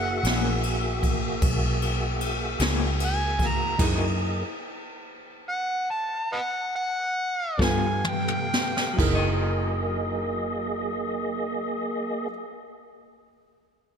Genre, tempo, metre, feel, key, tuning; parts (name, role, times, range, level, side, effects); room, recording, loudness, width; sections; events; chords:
slow blues; 42-51 BPM (dotted quarters); 12/8; straight; F# mixolydian; A4 = 440 Hz
overdriven harmonica; melody; 0.0-9.0 s; B4 to A#5; -29 LUFS; equal; digital delay
dark grand piano; accompaniment; 0.0-12.3 s; D#4 to B4; -34 LUFS; right 4 dB; slapback echo
tonewheel organ; sustained chords; 0.0-12.3 s; A#3 to F5; -30 LUFS; right 1 dB; slow rotary speaker, chorus vibrato
vintage muted fingered electric bass; bass; 0.0-12.3 s; F#1 to G2; -28 LUFS; equal
jazz brush drum kit; drums; 0.2-9.2 s; crash cymbal, kick drum, ride cymbal, snare drum, toms; -27 LUFS; equal
electric guitar through a small old amp; accompaniment; 0.3-12.6 s; F#3 to D#5; -33 LUFS; left 4 dB; tremolo, slapback echo
moderate lush hall reverb, RT60 2.5 s; big arena sound; -24 LUFS; side -7 dB against mid
0.0-9.0 A section; 9.0-14.0 B section
harmonica solo 0.0-9.0; slowing down 2.2-9.0; stop 3.8-7.6; drum fill 7.6-9.0
0.0 F#9; 3.8 F#13; 7.6 G9; 9.0 F#13